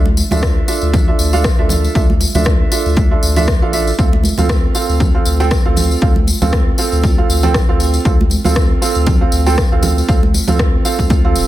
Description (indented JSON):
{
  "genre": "afro house",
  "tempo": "118 BPM",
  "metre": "4/4",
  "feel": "swing 56% on 16ths",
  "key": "unclear",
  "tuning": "A4 = 439 Hz",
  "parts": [
    { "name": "round analog bass", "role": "bass", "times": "0.0-11.5 s", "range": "D1 to D2", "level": "-16 LUFS", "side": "left 1 dB", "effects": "sidechain pumping" },
    { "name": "congas", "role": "percussion", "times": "0.1-11.2 s", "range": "none", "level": "-22 LUFS", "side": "right 3 dB", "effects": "none" },
    { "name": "tambourine", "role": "percussion", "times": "0.2-11.5 s", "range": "none", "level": "-23 LUFS", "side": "left 3 dB", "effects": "none" },
    { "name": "felt-muted upright piano", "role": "stabs", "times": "0.3-11.5 s", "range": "C4 to G5", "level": "-18 LUFS", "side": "right 5 dB", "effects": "sidechain pumping, digital delay" },
    { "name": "electronic kick drum", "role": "drums", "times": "0.4-11.2 s", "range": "none", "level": "-15 LUFS", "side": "left 1 dB", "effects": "overdrive" },
    { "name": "electronic rim click", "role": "drums", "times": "0.4-10.7 s", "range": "none", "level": "-24 LUFS", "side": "left 1 dB", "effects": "overdrive" }
  ],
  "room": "small room ambience",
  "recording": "none",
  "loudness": "-11 LUFS",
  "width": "side -14 dB against mid",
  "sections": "0.0-11.5 A section",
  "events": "none",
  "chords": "0.0 Dmadd9; 4.0 F/D"
}